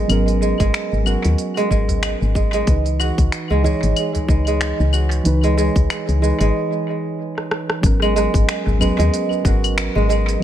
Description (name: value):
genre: organic downtempo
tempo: 93 BPM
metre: 4/4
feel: swing 57% on 16ths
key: G# minor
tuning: A4 = 441 Hz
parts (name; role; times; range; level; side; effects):
- muted felt-like synth keys; accompaniment; 0.0-10.4 s; E3 to C#5; -23 LUFS; right 2 dB; chorus, sidechain pumping, analog delay
- kora; arpeggios; 0.0-10.4 s; G#3 to F#4; -22 LUFS; right 2 dB; analog delay
- woody FM bass; bass; 0.0-10.4 s; G#1 to D#2; -18 LUFS; left 1 dB; sidechain pumping
- organic electronic drum kit; drums; 0.1-10.4 s; claves, finger snaps, hi-hat, rim click, shaker; -26 LUFS; left 2 dB; small room ambience, analog delay
- electronic kick drum; drums; 0.6-9.6 s; none; -17 LUFS; left 1 dB; small room ambience
- udu; percussion; 1.9-4.3, 8.7-9.0 s; none; -28 LUFS; equal; none
room: little or no reverb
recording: echo-heavy mix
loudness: -16 LUFS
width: side -11 dB against mid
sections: 0.0-7.8 A section; 7.8-10.4 B section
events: break 6.5-7.8; drum fill 7.4-7.8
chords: 0.0 G#m11; 2.7 C#m9; 7.8 G#m11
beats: | 0.09 0.74 1.38 2.03 | 2.67 3.32 3.96 4.61 | 5.25 5.90 6.54 7.19 | 7.83 8.48 9.12 9.77 | 10.41